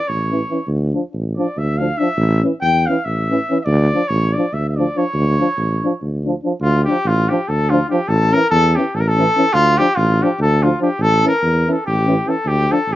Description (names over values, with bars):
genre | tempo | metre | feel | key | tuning
balkan folk, Balkan brass band | 286 BPM (eighths) | 7/8 | straight | D harmonic minor | A4 = 440 Hz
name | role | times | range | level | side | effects
warm cornet | melody | 0.0-13.0 s | F4 to G5 | -18 LUFS | left 1 dB | none
dark tuba | bass | 0.1-13.0 s | A1 to E2 | -17 LUFS | equal | none
dark euphonium | accompaniment | 0.3-12.8 s | C#4 to D4 | -21 LUFS | left 4 dB | none
warm euphonium | accompaniment | 0.3-12.8 s | E3 to F3 | -22 LUFS | right 4 dB | none
room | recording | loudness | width
little or no reverb | recorded outdoors, with no room sound, nothing above 7.6 kHz | -14 LUFS | side -14 dB against mid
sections
0.0-6.6 A section; 6.6-13.0 B section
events
cornet solo 0.0-6.6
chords
0.0 A; 0.7 Dm; 2.2 A; 3.7 Dm; 8.1 A; 9.5 Dm; 11.0 A; 12.5 Dm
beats
0.06 0.28 0.49 | 0.70 0.91 1.13 1.34 1.55 1.76 1.97 | 2.19 2.40 2.61 2.82 3.03 3.24 3.46 | 3.67 3.88 4.09 4.30 4.51 4.72 4.93 | 5.14 5.35 5.56 5.77 5.98 6.20 6.41 | 6.62 6.82 7.03 7.24 7.45 7.66 7.87 | 8.08 8.29 8.50 8.71 8.92 9.13 9.34 | 9.54 9.75 9.96 10.17 10.38 10.59 10.79 | 11.00 11.21 11.42 11.62 11.83 12.04 12.25 | 12.45 12.66 12.87